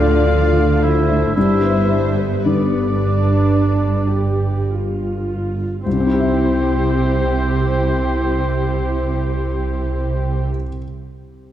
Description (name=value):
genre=cinematic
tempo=50-60 BPM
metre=4/4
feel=rubato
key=C major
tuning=A4 = 440 Hz
part: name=muted studio violin section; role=melody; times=0.0-10.5 s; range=G4 to D5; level=-33 LUFS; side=left 5 dB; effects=none
part: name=bright large flute ensemble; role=second line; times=0.0-10.5 s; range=G4 to D5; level=-30 LUFS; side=left 2 dB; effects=none
part: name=muted studio violin section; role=second line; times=0.0-10.5 s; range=G4 to F5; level=-32 LUFS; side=left 4 dB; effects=none
part: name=warm clarinet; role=second line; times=0.0-10.5 s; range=D4 to C5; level=-30 LUFS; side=left 3 dB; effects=none
part: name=warm oboe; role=second line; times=0.0-10.5 s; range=C5 to F5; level=-27 LUFS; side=right 1 dB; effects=none
part: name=felt-muted upright piano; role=accompaniment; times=0.0-11.5 s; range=C2 to E5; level=-23 LUFS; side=left 2 dB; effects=none
part: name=muted studio viola section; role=accompaniment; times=0.0-10.5 s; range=F3 to B4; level=-24 LUFS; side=right 2 dB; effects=none
part: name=dark French horn section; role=sustained chords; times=0.0-10.5 s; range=G3 to A4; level=-25 LUFS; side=left 8 dB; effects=none
part: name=muted studio cello section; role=bass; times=0.0-10.5 s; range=G2 to D3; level=-22 LUFS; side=right 2 dB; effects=none
part: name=muted studio double bass section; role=bass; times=0.0-10.5 s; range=G1 to D2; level=-21 LUFS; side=right 2 dB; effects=none
room=moderate concert hall reverb, RT60 2.3 s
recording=dark, warm production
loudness=-15 LUFS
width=side -11 dB against mid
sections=0.0-5.9 A section; 5.9-10.5 B section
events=slowing down 0.0-5.9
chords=0.0 Dm; 1.4 G; 5.9 C